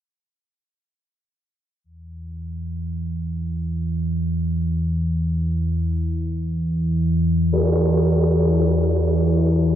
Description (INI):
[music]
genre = dark ambient drone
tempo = free time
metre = none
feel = none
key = unclear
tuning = A4 = 440 Hz
[part]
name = analog drone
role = drone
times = 2.2-9.8 s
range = E2 to E3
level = -20 LUFS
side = equal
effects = chorus
[part]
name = tam-tam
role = percussion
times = 7.5-7.7 s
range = none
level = -21 LUFS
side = equal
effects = low-pass filter on cymbals
[sound]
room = wet cathedral reverb, RT60 5.9 s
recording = dark, warm production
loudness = -19 LUFS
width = side -10 dB against mid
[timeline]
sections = 1.8-9.8 A section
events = none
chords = none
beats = free time